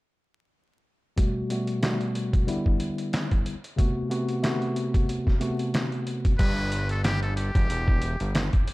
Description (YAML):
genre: hip hop, boom-bap hip-hop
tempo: 92 BPM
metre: 4/4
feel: swing 56% on 16ths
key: unclear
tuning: A4 = 440 Hz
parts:
  - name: mellow tine electric piano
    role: accompaniment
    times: 1.2-6.3 s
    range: B2 to F#4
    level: -27 LUFS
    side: left 1 dB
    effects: medium stereo tremolo, cassette tape, low-pass filter
  - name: trip hop sampler-style drum kit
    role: drums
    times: 1.2-8.7 s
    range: crash cymbal, hi-hat, kick drum, snare drum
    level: -25 LUFS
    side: equal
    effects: none
  - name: trumpet with metal mute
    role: melody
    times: 6.4-8.3 s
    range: G4 to B4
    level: -31 LUFS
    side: equal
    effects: tape echo
  - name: fat analog bass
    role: bass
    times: 6.4-8.5 s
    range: E1 to G1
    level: -27 LUFS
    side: equal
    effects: none
room: little or no reverb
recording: echo-heavy mix, vinyl crackle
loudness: -23 LUFS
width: side -20 dB against mid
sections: 1.2-6.4 A section; 6.4-8.7 B section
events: filter sweep on tine electric piano 1.2-6.4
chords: 1.2 Gmaj9; 2.5 Em7; 3.8 Am69; 6.4 Gmaj7; 7.7 Em